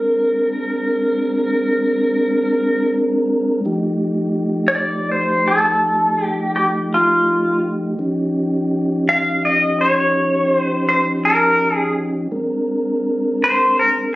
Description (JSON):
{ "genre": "blues", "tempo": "55 BPM (dotted quarters)", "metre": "12/8", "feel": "straight", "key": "Bb mixolydian", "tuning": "A4 = 435 Hz", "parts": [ { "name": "clean lap steel guitar", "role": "melody", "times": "0.0-13.9 s", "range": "F4 to F5", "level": "-16 LUFS", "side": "equal", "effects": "none" }, { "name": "mellow tonewheel organ", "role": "sustained chords", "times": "0.0-14.2 s", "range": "F3 to Bb4", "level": "-19 LUFS", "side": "equal", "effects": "fast rotary speaker" } ], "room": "moderate studio reverb, RT60 0.6 s", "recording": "recorded on a phone in the room, studio reverb, compression", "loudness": "-15 LUFS", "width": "side -18 dB against mid", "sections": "0.0-14.2 A section", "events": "none", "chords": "0.0 Bb9; 3.6 F9; 8.0 Eb9; 12.3 Bb9", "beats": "0.40 1.48 2.57 | 3.65 4.74 5.82 6.90 | 7.99 9.07 10.15 11.23 | 12.31 13.40" }